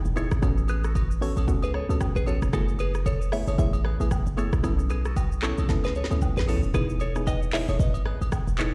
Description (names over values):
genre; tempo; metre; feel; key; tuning
afrobeats; 114 BPM; 4/4; swing 58% on 16ths; E major; A4 = 441 Hz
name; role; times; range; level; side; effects
hard-hitting 808-style bass; bass; 0.1-8.7 s; D#1 to C#2; -29 LUFS; equal; none
afro-pop drum kit; drums; 0.1-8.7 s; handclaps, hi-hat, kick drum, rim click, shaker, snare drum, toms; -30 LUFS; equal; none
soft round pluck; accompaniment; 0.2-8.7 s; A3 to A4; -34 LUFS; equal; chorus, plate reverb
direct-recorded clean electric guitar; riff; 0.2-8.7 s; F#4 to E5; -36 LUFS; equal; phaser, digital delay
agogo bells and woodblock; percussion; 0.2-8.7 s; none; -43 LUFS; equal; none
room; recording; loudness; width
little or no reverb; played on a big sound system in a bare room, large studio reverb; -25 LUFS; mono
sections
0.0-6.7 A section; 6.7-8.7 B section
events
drum fill 5.7-6.7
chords
0.4 A69; 2.5 F#m11; 4.6 B9sus4; 6.7 Emaj7